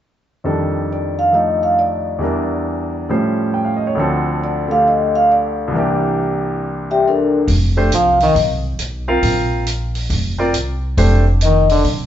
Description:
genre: jazz, small-group swing and bop.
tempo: 137 BPM.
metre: 4/4.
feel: swing 65% on 8ths.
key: F mixolydian.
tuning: A4 = 441 Hz.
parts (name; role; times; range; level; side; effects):
clear grand piano; accompaniment; 0.4-11.2 s; C2 to G5; -18 LUFS; right 1 dB; none.
vibraphone with soft mallets; melody; 0.9-8.4, 11.4-11.9 s; D4 to G5; -15 LUFS; left 2 dB; none.
upright bass; bass; 7.5-12.1 s; F1 to C2; -17 LUFS; equal; none.
open jazz drum kit; drums; 7.5-12.0 s; hi-hat, kick drum; -22 LUFS; right 1 dB; none.
trombone with metal mute; second line; 7.9-8.4, 11.4-11.8 s; D3 to F3; -19 LUFS; right 4 dB; none.
room: moderate large studio reverb, RT60 1.2 s.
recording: band playing live in one room, nothing above 7.7 kHz.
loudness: -14 LUFS.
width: side -10 dB against mid.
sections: 0.5-7.5 A section; 7.5-12.1 B section.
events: none.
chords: 0.5 F13; 2.2 Em7b5; 3.1 A7alt; 4.0 Dm7; 5.7 C9; 7.5 F5; 9.2 Bbsus2; 11.0 Fadd9.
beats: | 0.45 0.89 1.33 1.77 | 2.21 2.65 3.09 3.53 | 3.96 4.40 4.84 5.28 | 5.72 6.16 6.60 7.04 | 7.48 7.91 8.35 8.79 | 9.23 9.66 10.10 10.54 | 10.98 11.41 11.85.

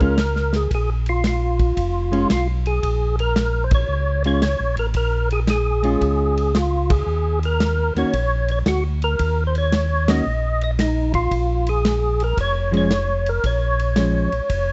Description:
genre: soul jazz organ trio.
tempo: 113 BPM.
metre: 4/4.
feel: swing 67% on 8ths.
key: Bb minor.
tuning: A4 = 441 Hz.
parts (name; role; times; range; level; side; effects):
percussive tonewheel organ; melody; 0.0-14.7 s; Eb4 to Eb5; -25 LUFS; equal; slow rotary speaker, chorus vibrato.
hollow-body jazz guitar; accompaniment; 0.0-14.3 s; Eb3 to Gb4; -24 LUFS; equal; none.
mellow tonewheel organ; bass; 0.0-14.7 s; F1 to Eb2; -24 LUFS; equal; overdrive, chorus vibrato, slow rotary speaker.
warm soul drum kit; drums; 0.0-14.7 s; hi-hat, kick drum, ride cymbal, snare drum; -25 LUFS; equal; none.
room: light reverb.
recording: nothing above 7.9 kHz.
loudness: -20 LUFS.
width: mono.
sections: 0.0-14.7 A section.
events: band accent 3.6, 6.8, 10.0.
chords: 0.0 Bbm7; 7.1 Eb7(no3); 11.3 Bbm7.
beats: 0.18 | 0.71 1.24 1.77 2.30 | 2.83 3.36 3.89 4.42 | 4.96 5.49 6.01 6.54 | 7.08 7.61 8.13 8.67 | 9.20 9.73 10.26 10.79 | 11.32 11.85 12.38 12.90 | 13.44 13.96 14.49.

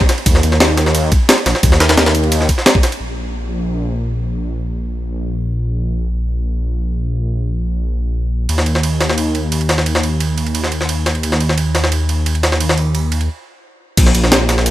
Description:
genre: liquid drum and bass.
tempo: 175 BPM.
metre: 4/4.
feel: straight.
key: unclear.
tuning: A4 = 439 Hz.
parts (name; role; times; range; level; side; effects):
electronic kick drum; drums; 0.0-2.8, 14.0 s; none; -13 LUFS; equal; none.
breakbeat sampler-style drum kit; drums; 0.1-3.0, 14.0-14.7 s; crash cymbal, hi-hat, ride cymbal, rim click, snare drum; -17 LUFS; equal; none.
jungle sampler-style drum kit; drums; 0.1-3.0, 8.5-14.7 s; ride cymbal, snare drum; -17 LUFS; right 1 dB; overdrive, high-pass filter on snare, high-pass filter on cymbals.
swelling detuned saw bass; bass; 0.3-14.7 s; Bb1 to Eb2; -16 LUFS; equal; none.
room: little or no reverb.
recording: none.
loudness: -14 LUFS.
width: side -14 dB against mid.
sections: 0.0-3.0 A section; 3.0-14.0 B section.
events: drop 0.0-3.0; stop 13.3-14.0.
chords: none.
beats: | 0.26 0.60 0.95 1.29 | 1.63 1.98 2.32 2.66 | 3.00 3.35 3.69 4.03 | 4.38 4.72 5.06 5.41 | 5.75 6.09 6.43 6.78 | 7.12 7.46 7.80 8.15 | 8.49 8.83 9.18 9.52 | 9.86 10.21 10.55 10.89 | 11.23 11.58 11.92 12.26 | 12.61 12.95 13.29 13.63 | 13.98 14.32 14.66.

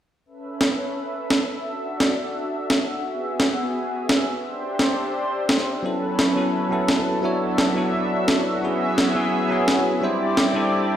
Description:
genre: liquid drum and bass.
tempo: 172 BPM.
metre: 4/4.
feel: straight.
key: unclear.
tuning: A4 = 441 Hz.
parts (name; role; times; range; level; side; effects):
lush unison pad; sustained chords; 0.3-11.0 s; B3 to E5; -25 LUFS; equal; chorus.
electronic snare drum; drums; 0.6-10.4 s; none; -21 LUFS; equal; none.
bell-like tine electric piano; accompaniment; 5.8-11.0 s; F#3 to C#5; -22 LUFS; equal; phaser, digital delay.
room: moderate digital room reverb, RT60 1.0 s.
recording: played on a big sound system in a bare room, stone room reverb.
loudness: -20 LUFS.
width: side -10 dB against mid.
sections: 0.3-11.0 A section.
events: filter sweep on analog synth pad 0.3-11.0.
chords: 0.3 B9sus4; 1.7 E9sus4; 3.0 F#9sus4; 4.4 D9sus4; 5.8 B9sus4; 7.2 E9sus4; 8.6 F#9sus4; 10.0 D9sus4.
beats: | 0.26 0.61 0.95 1.30 | 1.65 2.00 2.35 2.70 | 3.05 3.40 3.75 4.09 | 4.44 4.79 5.14 5.49 | 5.84 6.19 6.54 6.88 | 7.23 7.58 7.93 8.28 | 8.63 8.98 9.33 9.68 | 10.03 10.37 10.72.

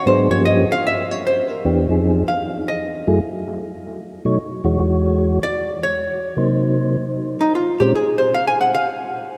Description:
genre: jazz.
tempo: 152 BPM.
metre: 4/4.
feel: swing 64% on 8ths.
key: unclear.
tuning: A4 = 441 Hz.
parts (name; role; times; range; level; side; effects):
archtop guitar, miked and amplified; accompaniment; 0.0-9.3 s; Eb4 to Ab5; -22 LUFS; equal; lush chorus.
percussive tonewheel organ; melody; 0.1-7.9 s; Fb2 to Db5; -21 LUFS; equal; slow rotary speaker, chorus vibrato, analog delay.
room: wet cathedral reverb, RT60 4.7 s.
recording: dreamy mix soaked in reverb.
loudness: -19 LUFS.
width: mono.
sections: 0.0-1.6 A section; 1.6-9.4 A section.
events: hollow-body jazz guitar solo 0.0-9.4.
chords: 0.1 Gm7b5; 0.8 N.C.; 1.6 Fm7; 3.2 N.C.; 4.8 E69; 6.4 Cm7b5; 7.2 Bbsus2 (rootless); 8.0 N.C..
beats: | 0.06 0.46 0.85 1.24 | 1.64 2.03 2.43 2.82 | 3.21 3.61 4.00 4.40 | 4.79 5.19 5.58 5.98 | 6.37 6.77 7.16 7.56 | 7.95 8.35 8.74 9.13.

